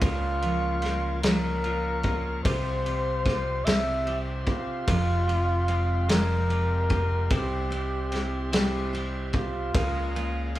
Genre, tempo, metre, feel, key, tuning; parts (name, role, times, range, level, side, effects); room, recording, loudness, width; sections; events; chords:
six-eight pop ballad; 49 BPM (dotted quarters); 6/8; straight; A4 = 440 Hz
mellow flugelhorn; melody; 0.0-10.5 s; F4 to E5; -30 LUFS; equal
picked steel-string acoustic guitar; accompaniment; 0.0-10.6 s; F2 to G4; -33 LUFS; right 1 dB
bright tonewheel organ; sustained chords; 0.0-10.6 s; Ab3 to Db6; -39 LUFS; equal; slow rotary speaker
semi-hollow electric guitar; arpeggios; 0.0-10.6 s; C3 to Bb4; -39 LUFS; equal
fingered electric bass; bass; 0.0-10.6 s; F1 to Db2; -29 LUFS; equal
loose indie drum kit; drums; 0.0-10.6 s; kick drum, ride cymbal, snare drum; -29 LUFS; equal
moderate studio reverb, RT60 0.9 s; band playing live in one room; -24 LUFS; side -14 dB against mid
0.0-10.6 A section
0.0 Bbm/Db; 2.4 Csus4; 3.7 C; 4.9 Fmadd9; 7.3 C; 9.7 Bbm7/Db